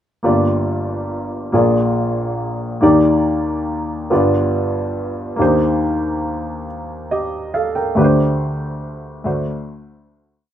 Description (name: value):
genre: gospel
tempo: 47 BPM (dotted quarters)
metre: 6/8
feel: straight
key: G minor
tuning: A4 = 437 Hz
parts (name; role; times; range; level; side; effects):
- warm baby grand piano; solo; 0.2-10.5 s; G1 to G5; -16 LUFS; equal; none
room: moderate studio reverb, RT60 0.5 s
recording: rough home demo mix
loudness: -16 LUFS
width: side -10 dB against mid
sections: 0.2-10.5 verse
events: fade-out 8.0-10.5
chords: 0.2 Gm7; 1.5 Bb7; 2.8 Ebmaj7; 4.1 G7; 5.4 Cm7/Eb; 8.0 D7sus4; 9.3 D7